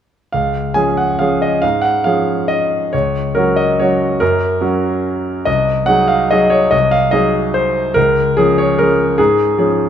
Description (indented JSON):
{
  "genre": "classical, piano waltz",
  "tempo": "133-156 BPM",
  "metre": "3/4",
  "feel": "rubato",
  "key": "Db major",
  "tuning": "A4 = 440 Hz",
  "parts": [
    { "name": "clear concert grand piano", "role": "solo", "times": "0.3-9.9 s", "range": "C2 to Ab5", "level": "-12 LUFS", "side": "equal", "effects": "none" }
  ],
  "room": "moderate recital hall reverb, RT60 1.6 s",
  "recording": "minimal, uncompressed stereo recording",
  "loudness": "-12 LUFS",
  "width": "side -9 dB against mid",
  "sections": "0.3-9.9 A section",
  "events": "none",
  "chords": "0.3 Db; 2.9 Gb/Db; 5.5 Ab7/C; 8.0 Db",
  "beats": "| 0.34 0.76 1.19 | 1.63 2.05 2.49 | 2.93 3.35 3.79 | 4.21 4.62 5.05 | 5.47 5.88 6.31 | 6.73 7.14 7.56 | 7.96 8.36 8.78 | 9.18 9.58"
}